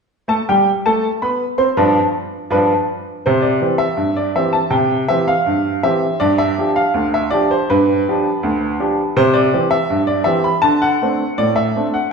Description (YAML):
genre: ragtime piano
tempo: 81 BPM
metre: 2/4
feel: straight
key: C major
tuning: A4 = 441 Hz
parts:
  - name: clear upright piano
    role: solo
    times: 0.3-12.1 s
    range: D2 to C6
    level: -14 LUFS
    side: equal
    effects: none
room: wet large studio reverb, RT60 1.5 s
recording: band playing live in one room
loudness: -14 LUFS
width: side -5 dB against mid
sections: 0.3-3.2 A section; 3.2-12.1 B section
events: none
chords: 0.3 C5/G; 1.8 G7; 3.2 C; 6.2 G7; 9.2 C; 10.6 D5